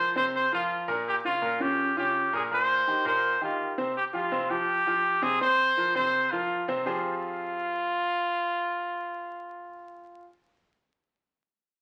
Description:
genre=latin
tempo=165 BPM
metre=4/4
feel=straight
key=F minor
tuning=A4 = 440 Hz
part: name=clear trumpet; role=melody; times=0.0-10.3 s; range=F4 to C5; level=-28 LUFS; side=equal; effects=none
part: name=clear baby grand piano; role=accompaniment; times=0.0-10.3 s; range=Bb2 to C5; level=-33 LUFS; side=equal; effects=none
room=moderate large studio reverb, RT60 0.8 s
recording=very old 78 rpm record, vinyl crackle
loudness=-27 LUFS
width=mono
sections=0.0-4.0 A section; 4.0-6.9 B section; 6.9-9.8 C section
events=none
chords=0.0 Bbsus2; 1.1 Gm7b5; 2.5 Eb6; 4.0 Fsus2; 5.4 Bbsus2; 6.9 Fmadd9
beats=0.34 0.70 | 1.06 1.42 1.78 2.15 | 2.51 2.87 3.23 3.60 | 3.96 4.32 4.68 5.05 | 5.41 5.77 6.14 6.50 | 6.86 7.22 7.59 7.95 | 8.31 8.68 9.04 9.40

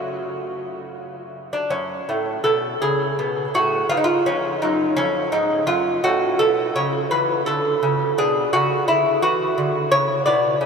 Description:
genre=classical, baroque-style dance for lute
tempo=56 BPM (dotted quarters)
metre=6/8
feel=uneven beats, rubato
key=F# minor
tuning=A4 = 440 Hz
part: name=lute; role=solo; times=0.0-10.7 s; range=F2 to D5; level=-18 LUFS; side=equal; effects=analog delay
room=wet huge ambient reverb, RT60 8.2 s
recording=dreamy mix soaked in reverb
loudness=-18 LUFS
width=side -6 dB against mid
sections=0.0-1.7 A section; 1.7-10.7 B section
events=none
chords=0.0 F#m; 3.9 Fdim; 6.0 A69; 8.2 Bm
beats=0.55 | 1.70 2.81 | 3.89 4.98 | 6.05 7.12 | 8.18 9.22 | 10.27

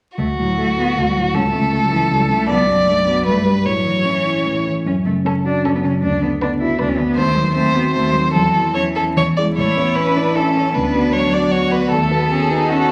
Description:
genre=quick classical-period movement for piano quartet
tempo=154 BPM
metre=3/4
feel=rubato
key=D major, A major from 4.9 s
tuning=A4 = 440 Hz
part: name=bright violin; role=melody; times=0.2-12.9 s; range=F#4 to D5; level=-21 LUFS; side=equal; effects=none
part: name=rich cello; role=second line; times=0.2-12.9 s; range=E3 to E4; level=-23 LUFS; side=equal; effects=none
part: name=warm concert grand piano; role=accompaniment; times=0.2-12.9 s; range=A1 to D5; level=-21 LUFS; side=equal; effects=none
part: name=rich violin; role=second line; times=9.6-12.9 s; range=C#4 to A4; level=-25 LUFS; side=equal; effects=none
room=wet recital hall reverb, RT60 1.7 s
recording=vinyl crackle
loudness=-17 LUFS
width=mono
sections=0.2-9.6 A section; 9.6-12.9 B section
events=none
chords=0.2 D; 1.4 A/C#; 2.5 Bm; 3.3 G; 3.7 A; 4.9 F#m; 6.0 Bm/D; 7.2 D#dim7; 8.4 A/E; 9.2 E; 9.6 A; 10.7 Bm/D; 11.9 B7/D#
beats=| 0.19 0.58 0.97 | 1.36 1.74 2.12 | 2.50 2.88 3.27 | 3.67 4.06 4.46 | 4.86 5.26 5.65 | 6.04 6.42 6.80 | 7.18 7.56 7.95 | 8.35 8.76 9.17 | 9.58 9.97 10.36 | 10.75 11.14 11.53 | 11.92 12.31 12.70

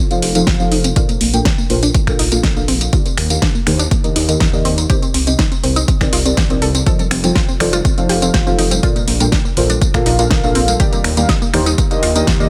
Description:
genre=progressive house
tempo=122 BPM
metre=4/4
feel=straight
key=F mixolydian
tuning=A4 = 442 Hz
part: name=glassy wavetable pluck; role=arpeggios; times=0.0-12.5 s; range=Bb3 to A4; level=-24 LUFS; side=equal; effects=chorus, sidechain pumping, tape echo
part: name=deep mellow chord stab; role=stabs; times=0.1-12.5 s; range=Bb2 to G5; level=-21 LUFS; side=equal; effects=chorus, sidechain pumping, tape echo
part: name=pop drum kit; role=drums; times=0.1-12.5 s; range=finger snaps, hi-hat, snare drum, tambourine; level=-22 LUFS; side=equal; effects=none
part: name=dark detuned saw bass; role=bass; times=0.2-12.5 s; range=F1 to Eb2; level=-22 LUFS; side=equal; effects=sidechain pumping
part: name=electronic kick drum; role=drums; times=0.5-12.4 s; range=none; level=-19 LUFS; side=equal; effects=overdrive
part: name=congas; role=percussion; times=7.0-12.5 s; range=none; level=-30 LUFS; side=equal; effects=none
room=light reverb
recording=none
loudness=-15 LUFS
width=mono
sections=0.0-12.5 A section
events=filter sweep on synth arpeggio sound 0.0-12.5; filter sweep on synth stab 0.0-12.5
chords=0.0 F7; 1.0 Bbmaj7; 2.9 Ebmaj7; 4.9 Cm7; 6.9 F7; 8.8 Bbmaj7; 10.8 Ebmaj7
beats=0.47 | 0.96 1.45 1.95 2.44 | 2.93 3.42 3.91 4.41 | 4.90 5.39 5.88 6.37 | 6.86 7.36 7.85 8.34 | 8.83 9.32 9.81 10.31 | 10.80 11.29 11.78 12.27

